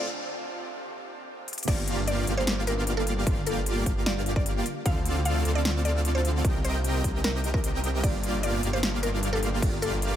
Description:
future bass; 151 BPM; 4/4; half-time; G minor; A4 = 440 Hz
mallet-like synth pluck; melody; 0.0-9.9 s; A4 to F5; -34 LUFS; equal; chorus, sidechain pumping, digital delay
shimmering ambient pad; sustained chords; 0.0-10.2 s; C3 to G4; -38 LUFS; right 1 dB; chorus, built-in reverb, sidechain pumping
dense compressed supersaw; riff; 0.0-10.2 s; Bb3 to G5; -31 LUFS; right 1 dB; sidechain pumping
wide detuned saw bass; bass; 0.0-10.2 s; G1 to D2; -28 LUFS; equal; chorus, sidechain pumping
big-room dance drum kit; drums; 1.5-10.1 s; crash cymbal, hi-hat, snare drum; -33 LUFS; left 1 dB; overdrive, small room reverb
electronic kick drum; drums; 1.7-9.7 s; -27 LUFS; equal; overdrive, small room reverb
little or no reverb; high-pass filter; -24 LUFS; side -10 dB against mid
0.0-1.7 A section; 1.7-10.2 B section
build-up 0.0-1.7; filter sweep 0.0-1.7; break 0.1-1.7; drum fill 1.5; drop 1.7-10.2
0.1 Cm7; 1.7 Gm7; 4.7 Dm7; 6.4 Cm7; 8.0 Gm7

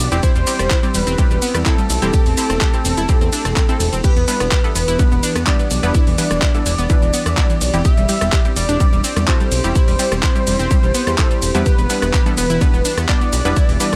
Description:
progressive house; 126 BPM; 4/4; straight; E minor; A4 = 440 Hz
unison lead; melody; 0.0-14.0 s; A4 to E5; -25 LUFS; equal; sidechain pumping, dub echo
evolving wavetable pad; sustained chords; 0.0-14.0 s; E3 to G4; -31 LUFS; equal
unison pluck; stabs; 0.0-14.0 s; G3 to D5; -28 LUFS; equal; sidechain pumping
fat analog bass; bass; 0.0-14.0 s; E1 to E2; -23 LUFS; equal; tube saturation, sidechain pumping
analog pluck; arpeggios; 0.1-14.0 s; E3 to G4; -27 LUFS; equal; chorus, sidechain pumping, dub echo
pop drum kit; drums; 0.1-14.0 s; crash cymbal, handclaps, hi-hat, ride cymbal, rim click, shaker; -25 LUFS; equal; sidechain pumping on hats, small room ambience, sidechain pumping on perc, sidechain pumping on cymbals
electronic kick drum; drums; 0.2-13.7 s; -18 LUFS; equal; small room ambience
digital ambience; -16 LUFS; mono
0.0-14.0 A section
0.2 C/E; 4.0 Em7

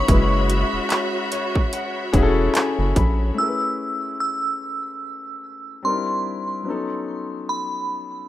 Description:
contemporary R&B; 73 BPM; 4/4; swing 58% on 16ths; A4 = 440 Hz
glassy synth bell; melody; 0.0-8.3 s; B5 to E6; -26 LUFS; right 1 dB; chorus, tremolo, tape echo
warm concert grand piano; accompaniment; 0.0-8.3 s; F#3 to B5; -25 LUFS; left 4 dB
clear studio string section; sustained chords; 0.0-3.3 s; F#4 to B5; -27 LUFS; left 1 dB; sidechain pumping
rubbery square bass; bass; 0.0-3.3 s; E1 to A#1; -20 LUFS; equal
trap drum kit; drums; 0.1-3.2 s; handclaps, hi-hat, kick drum; -19 LUFS; equal
digital ambience; rough home demo mix; -20 LUFS; side -13 dB against mid
0.0-3.4 A section; 3.4-8.3 B section
grand piano fill 0.9-3.4
0.1 F#7sus4; 3.4 Amaj7; 5.8 C9; 6.7 B9

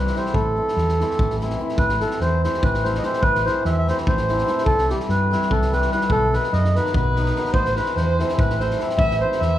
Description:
balkan folk, Balkan wedding band; 292 BPM (eighths); 7/8; straight; A dorian sharp4; A4 = 436 Hz
mellow accordion; melody; 0.0-9.6 s; G4 to E5; -22 LUFS; equal
hammered dulcimer; accompaniment; 0.0-9.6 s; D#3 to E4; -26 LUFS; left 2 dB
fingered electric bass; bass; 0.0-9.6 s; A1 to G2; -23 LUFS; equal
loose indie drum kit; percussion; 0.1-9.5 s; kick drum, snare drum; -26 LUFS; equal
dark violin; second line; 6.8-9.6 s; B4 to E5; -27 LUFS; right 5 dB
moderate recital hall reverb, RT60 1.4 s; heard from further back in the room; -18 LUFS; side -12 dB against mid
0.0-1.8 A section; 1.8-9.6 A section
0.3 Am; 4.7 C; 6.1 B; 7.5 Am

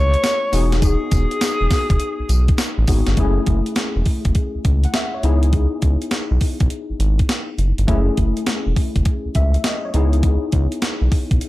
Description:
R&B, new jack swing; 102 BPM; 4/4; swing 66% on 16ths; F# dorian; A4 = 439 Hz
breathy alto saxophone; melody; 0.0-2.8 s; G#4 to C#5; -22 LUFS; left 1 dB; tape echo
tine electric piano; accompaniment; 0.0-11.5 s; G#3 to F#5; -24 LUFS; left 3 dB; ensemble chorus
round analog bass; bass; 0.0-11.4 s; E1 to C#2; -17 LUFS; equal
clean 12-bit digital drum machine; drums; 0.1-11.5 s; hi-hat, kick drum, snare drum, tambourine; -20 LUFS; equal; overdrive
digital ambience; -16 LUFS; side -17 dB against mid
0.0-3.2 A section; 3.2-11.5 B section
0.0 F#m7 (rootless); 0.5 Emaj7; 3.2 F#m7; 5.2 C#m7; 7.9 F#m7; 9.9 C#m7

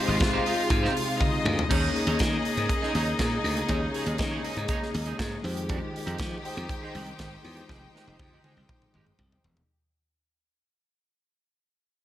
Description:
disco; 120 BPM; 4/4; straight; A4 = 440 Hz
clear studio string section; second line; 0.0-9.4 s; Bb3 to G5; -32 LUFS; left 2 dB
electric guitar at the edge of break-up; accompaniment; 0.0-9.6 s; Ab3 to Eb5; -35 LUFS; right 4 dB; analog chorus
mellow tine electric piano; accompaniment; 0.0-9.7 s; Ab3 to Db5; -35 LUFS; left 3 dB; medium stereo tremolo
rich studio string section; sustained chords; 0.0-9.6 s; C3 to G4; -33 LUFS; equal
glassy slap bass; bass; 0.1-9.6 s; Fb1 to F3; -30 LUFS; equal
modern studio drum kit; drums; 0.2-9.7 s; crash cymbal, hi-hat, kick drum, snare drum, toms; -30 LUFS; equal
light reverb, studio reverb; -25 LUFS; side -12 dB against mid
0.0-1.7 A section; 1.7-9.7 B section
drum fill 1.2-1.7, 7.7-9.7; fade-out 1.7-9.7
0.0 Abmaj7; 1.7 Eb7sus4; 5.4 Fm9

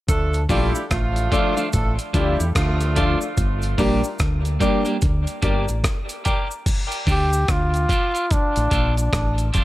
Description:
dub reggae; 73 BPM; 4/4; swing 62% on 16ths; D minor; A4 = 440 Hz
warm horn section; second line; 0.1-3.2 s; D3 to A4; -27 LUFS; right 3 dB; tape echo
fingered electric bass; bass; 0.1-9.6 s; F1 to E2; -22 LUFS; equal
breakbeat sampler-style drum kit; drums; 0.1-9.6 s; crash cymbal, hi-hat, kick drum, rim click; -22 LUFS; equal
cabasa; percussion; 0.1-9.6 s; -36 LUFS; right 1 dB; high-pass filter on perc
clean electric guitar; accompaniment; 0.5-9.6 s; F3 to G4; -26 LUFS; right 3 dB; high-pass filter, tape echo
clear upright piano; stabs; 0.5-9.6 s; D4 to D5; -27 LUFS; left 5 dB; high-pass filter, tape echo
bright trombone; melody; 7.1-9.5 s; D4 to G4; -22 LUFS; equal; tape echo
studio ambience; -18 LUFS; side -16 dB against mid
0.1-6.7 A section; 6.7-9.6 B section
filter sweep 3.4-9.6
0.1 Dm; 3.4 Gm; 6.7 Dm

